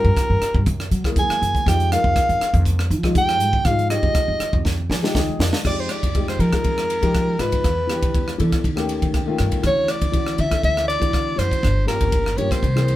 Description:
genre	electric jazz fusion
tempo	120 BPM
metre	4/4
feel	straight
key	F dorian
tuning	A4 = 440 Hz
part	breathy soprano saxophone	melody	0.0-13.0 s	Bb4 to Ab5	-22 LUFS	equal	none
part	dark concert grand piano	accompaniment	0.0-13.0 s	Eb3 to Ab5	-26 LUFS	left 4 dB	none
part	upright bass	bass	0.0-13.0 s	G1 to Gb3	-22 LUFS	equal	none
part	crisp fusion drum kit	drums	0.0-13.0 s	crash cymbal, hi-hat, kick drum, ride cymbal, rim click, snare drum	-23 LUFS	equal	none
room	moderate studio reverb, RT60 0.5 s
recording	band playing live in one room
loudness	-17 LUFS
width	side -14 dB against mid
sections	0.0-5.6 A section; 5.6-13.0 B section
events	soprano saxophone solo 0.0-5.6; drum fill 4.7-5.6; grand piano fill 4.7-5.6, 8.9-9.6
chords	0.0 Gm7b5; 0.7 Gb9; 1.7 Fm9; 7.6 Em7; 8.6 Eb7#11; 9.6 Dmaj9; 11.6 Gm7b5

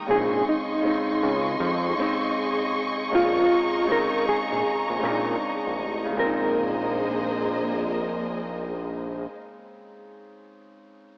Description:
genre	hip hop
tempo	79 BPM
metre	4/4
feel	swing 66% on 16ths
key	Bb minor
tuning	A4 = 440 Hz
part	felt-muted upright piano	accompaniment	0.0-11.2 s	Db3 to G4	-29 LUFS	equal	cassette tape
part	warm studio string section	sustained chords	0.0-9.3 s	Bb3 to Db6	-27 LUFS	equal	none
part	mellow electric guitar	melody	0.1-8.4 s	Eb4 to Bb4	-25 LUFS	equal	tremolo
part	fat analog bass	bass	0.1-9.3 s	A1 to Bb2	-28 LUFS	equal	none
room	wet lush hall reverb, RT60 2.5 s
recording	rough home demo mix, cassette tape, AM radio sound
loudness	-22 LUFS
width	side -30 dB against mid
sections	0.0-6.2 A section; 6.2-9.2 B section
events	none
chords	0.1 Bbm11

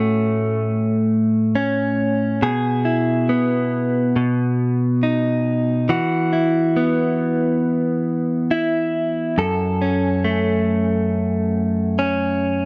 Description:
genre	pop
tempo	69 BPM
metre	4/4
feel	straight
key	E major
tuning	A4 = 440 Hz
part	direct-recorded clean electric guitar	solo	0.0-12.7 s	F#2 to A4	-20 LUFS	equal	none
room	light reverb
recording	dry, close 1970s-style studio recording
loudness	-20 LUFS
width	mono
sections	0.0-12.7 A section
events	none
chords	0.0 F#m/A; 2.4 E/B; 4.2 B; 5.9 Esus2; 9.4 F#m

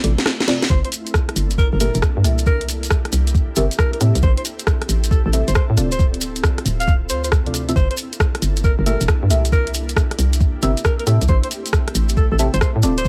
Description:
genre	UK garage, two-step garage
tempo	136 BPM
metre	4/4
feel	swing 66% on 16ths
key	G dorian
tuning	A4 = 440 Hz
part	ethereal airy pad	sustained chords	0.0-13.1 s	A3 to A4	-34 LUFS	equal	ensemble chorus, built-in reverb, sidechain pumping
part	deep mellow chord stab	stabs	0.0-13.0 s	Bb3 to E5	-27 LUFS	equal	chorus, phaser, dub echo
part	hollow knocking FM bass	bass	0.0-13.1 s	D1 to A2	-21 LUFS	equal	none
part	garage drum kit	drums	0.0-13.0 s	hi-hat, rim click, snare drum	-26 LUFS	equal	studio reverb
part	reverse cymbal	sound effects	0.1-0.7 s	none	-34 LUFS	equal	none
part	breathy alto saxophone	melody	0.7-13.1 s	A4 to F5	-28 LUFS	equal	dub echo
part	electronic kick drum	drums	0.7-13.1 s	none	-19 LUFS	equal	overdrive, studio reverb
part	maracas	percussion	0.7-13.1 s	none	-31 LUFS	equal	none
room	little or no reverb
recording	none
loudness	-18 LUFS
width	mono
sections	0.0-13.1 A section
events	drum fill 0.0-0.7; filter sweep on synth stab 0.0-13.1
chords	0.0 Dm7; 0.7 Gm69; 2.5 C7; 4.0 Am7; 5.8 Dm7; 7.8 Gm69; 9.5 C7; 11.1 Am7

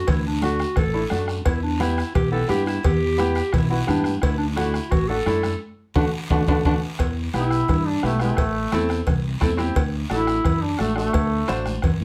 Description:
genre	latin, cumbia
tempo	173 BPM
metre	4/4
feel	straight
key	E minor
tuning	A4 = 440 Hz
part	breathy clarinet	second line	0.0-6.7 s	D4 to A4	-28 LUFS	equal	none
part	fingered electric bass	bass	0.1-12.0 s	A1 to A2	-28 LUFS	equal	none
part	bombo	percussion	0.1-12.0 s	none	-27 LUFS	equal	none
part	congas	percussion	0.1-12.0 s	none	-30 LUFS	equal	none
part	cowbell and timbales	percussion	0.1-12.0 s	none	-32 LUFS	equal	none
part	guiro	percussion	0.1-12.0 s	none	-40 LUFS	equal	none
part	clear upright piano	accompaniment	0.4-11.7 s	A3 to C5	-28 LUFS	equal	none
part	warm duduk	melody	7.4-11.6 s	A3 to E4	-26 LUFS	equal	none
room	wet studio reverb, RT60 0.5 s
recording	heard from further back in the room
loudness	-22 LUFS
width	mono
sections	0.0-7.0 A section; 7.0-12.0 B section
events	clarinet solo 0.0-7.0; band accent 5.6-7.0; drum fill 6.1-7.0; duduk solo 7.0-12.0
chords	0.0 D; 1.5 Em; 4.2 D; 7.0 Em; 8.4 Am; 9.8 D

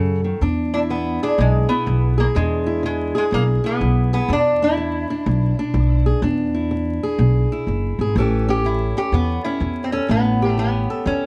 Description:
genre	acoustic country blues, solo or duo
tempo	124 BPM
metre	4/4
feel	swing 65% on 8ths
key	E mixolydian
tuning	A4 = 442 Hz
part	fingerpicked steel-string acoustic guitar	accompaniment	0.0-11.3 s	E2 to A4	-26 LUFS	equal	none
part	upright bass	bass	0.0-11.3 s	F#1 to F#2	-22 LUFS	equal	none
part	lap resonator guitar	melody	0.7-11.3 s	G#3 to G4	-24 LUFS	equal	plate reverb
room	light reverb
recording	dark, warm production, vinyl crackle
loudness	-19 LUFS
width	mono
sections	0.4-11.3 A section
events	none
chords	0.4 E7; 8.2 A7

